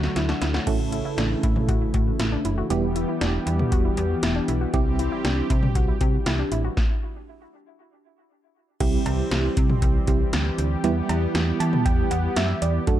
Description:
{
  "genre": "synth-pop",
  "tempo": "118 BPM",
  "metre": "4/4",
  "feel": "straight",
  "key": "E minor",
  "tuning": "A4 = 439 Hz",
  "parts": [
    { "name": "brassy analog pad", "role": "sustained chords", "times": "0.0-13.0 s", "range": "C#3 to G4", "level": "-30 LUFS", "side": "left 2 dB", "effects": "chorus" },
    { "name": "soft round pluck", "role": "arpeggios", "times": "0.0-6.8 s", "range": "D4 to G4", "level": "-31 LUFS", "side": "left 3 dB", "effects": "chorus, ping-pong delay" },
    { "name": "slap-like FM bass", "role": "bass", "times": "0.0-13.0 s", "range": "E1 to E3", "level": "-25 LUFS", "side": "equal", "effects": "none" },
    { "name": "electro analog drum machine", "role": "drums", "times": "0.0-13.0 s", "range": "cowbell, crash cymbal, hi-hat, kick drum, snare drum, toms", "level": "-24 LUFS", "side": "equal", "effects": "none" },
    { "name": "FM electric piano with tremolo", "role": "accompaniment", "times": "0.7-13.0 s", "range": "G3 to A5", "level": "-27 LUFS", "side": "right 5 dB", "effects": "none" }
  ],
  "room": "light reverb, digital ambience",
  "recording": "dark, warm production",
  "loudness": "-20 LUFS",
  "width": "side -12 dB against mid",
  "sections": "0.7-8.8 A section; 8.8-13.0 B section",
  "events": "drum fill 0.0-0.7; stop 6.8-8.8; FM electric piano fill 11.3-12.9",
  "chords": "0.0 D; 0.7 A; 2.7 Em; 4.7 C; 6.8 N.C.; 8.8 C; 10.8 Em"
}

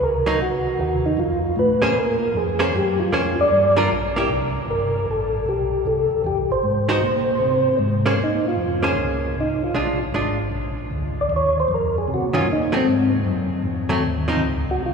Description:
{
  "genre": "soul jazz organ trio",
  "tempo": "154 BPM",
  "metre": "4/4",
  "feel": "swing 65% on 8ths",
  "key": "Bb minor from 8.2 s",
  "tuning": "A4 = 440 Hz",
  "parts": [
    { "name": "percussive tonewheel organ", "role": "melody", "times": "0.0-14.9 s", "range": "C4 to D5", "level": "-21 LUFS", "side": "equal", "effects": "slow rotary speaker, chorus vibrato" },
    { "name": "mellow tonewheel organ", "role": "bass", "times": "0.0-14.9 s", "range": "G1 to C3", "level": "-24 LUFS", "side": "left 1 dB", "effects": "chorus vibrato, slow rotary speaker" },
    { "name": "hollow-body jazz guitar", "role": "accompaniment", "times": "0.3-4.3, 6.9-14.4 s", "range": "Eb3 to C5", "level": "-25 LUFS", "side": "right 1 dB", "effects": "none" }
  ],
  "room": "wet cathedral reverb, RT60 6.8 s",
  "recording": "recorded in a church or concert hall, studio ambience",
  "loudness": "-18 LUFS",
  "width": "side -5 dB against mid",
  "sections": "0.0-8.2 A section; 8.2-14.9 B section",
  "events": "tonewheel organ solo 8.2-14.9",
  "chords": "0.4 Cdim; 1.2 F; 2.0 Bbm9; 3.5 Gm7; 4.3 C5; 5.1 Am9; 6.6 Ab; 8.2 Bbm9; 9.7 Bb7; 11.3 Ebmadd9; 12.9 Ab7; 14.4 Dbmaj7(no3)"
}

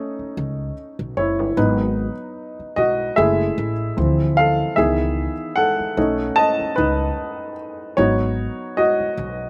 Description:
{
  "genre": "R&B, neo-soul",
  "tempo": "75 BPM",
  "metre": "4/4",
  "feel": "swing 55% on 16ths",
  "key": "unclear",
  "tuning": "A4 = 440 Hz",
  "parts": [
    { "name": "warm baby grand piano", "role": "accompaniment", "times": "0.0-9.5 s", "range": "D#3 to A5", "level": "-22 LUFS", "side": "equal", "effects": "none" },
    { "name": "upright bass", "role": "bass", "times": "0.2-9.5 s", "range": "F#1 to D2", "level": "-26 LUFS", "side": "equal", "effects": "none" }
  ],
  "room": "little or no reverb",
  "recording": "recorded outdoors, with no room sound",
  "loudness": "-20 LUFS",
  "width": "mono",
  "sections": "0.0-9.5 A section",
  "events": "grand piano solo 0.0-9.5",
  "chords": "0.0 B7 (rootless); 1.6 G#m7; 3.2 F#m9; 4.0 Dm9; 4.8 C#m9; 6.0 B7; 8.0 G#m7"
}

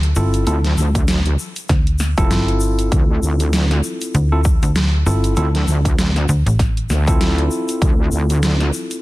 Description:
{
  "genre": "glitch hop",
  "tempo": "98 BPM",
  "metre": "4/4",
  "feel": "swing 57% on 16ths",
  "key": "D minor",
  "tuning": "A4 = 439 Hz",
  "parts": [
    { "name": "slap-like FM bass", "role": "bass", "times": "0.0-6.9 s", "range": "G1 to D2", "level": "-16 LUFS", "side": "equal", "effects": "none" },
    { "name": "dubstep drum kit", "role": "drums", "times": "0.0-9.0 s", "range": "hi-hat, snare drum", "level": "-23 LUFS", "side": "equal", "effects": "overdrive" },
    { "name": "tine electric piano", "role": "stabs", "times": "0.2-9.0 s", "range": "C4 to A4", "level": "-23 LUFS", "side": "left 1 dB", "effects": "overdrive, vintage 12-bit sampler grit, sidechain pumping, ping-pong delay" },
    { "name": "egg shaker", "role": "percussion", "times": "0.2-9.0 s", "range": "none", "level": "-32 LUFS", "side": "left 5 dB", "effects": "none" },
    { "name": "wobble bass", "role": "bass", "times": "0.5-8.7 s", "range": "F1 to D2", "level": "-16 LUFS", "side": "equal", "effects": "chorus, tube saturation" },
    { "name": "electronic kick drum", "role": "drums", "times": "0.9-8.0 s", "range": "none", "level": "-17 LUFS", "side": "equal", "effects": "overdrive" }
  ],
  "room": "little or no reverb",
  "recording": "dense, heavily limited modern master, vinyl crackle",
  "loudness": "-14 LUFS",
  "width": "side -18 dB against mid",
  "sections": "0.0-9.0 A section",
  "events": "none",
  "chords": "0.0 Dm7"
}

